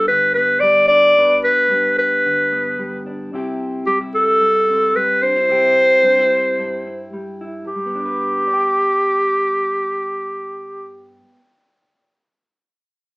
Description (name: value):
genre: highlife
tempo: 111 BPM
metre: 4/4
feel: straight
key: G major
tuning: A4 = 440 Hz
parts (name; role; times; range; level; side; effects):
- clear clarinet; melody; 0.0-11.2 s; G4 to D5; -14 LUFS; equal; none
- mellow electric guitar; accompaniment; 0.0-12.1 s; G2 to G5; -28 LUFS; equal; none
room: moderate studio ambience, RT60 0.4 s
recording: band playing live in one room, small speaker sound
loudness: -14 LUFS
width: side -25 dB against mid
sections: 0.0-7.7 A section; 7.7-12.0 B section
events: none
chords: 0.0 G; 3.3 C; 7.7 G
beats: 0.08 0.62 | 1.16 1.70 2.24 2.79 | 3.33 3.87 4.41 4.95 | 5.50 6.04 6.58 7.12 | 7.67 8.21 8.75 9.29 | 9.84 10.38 10.93 11.47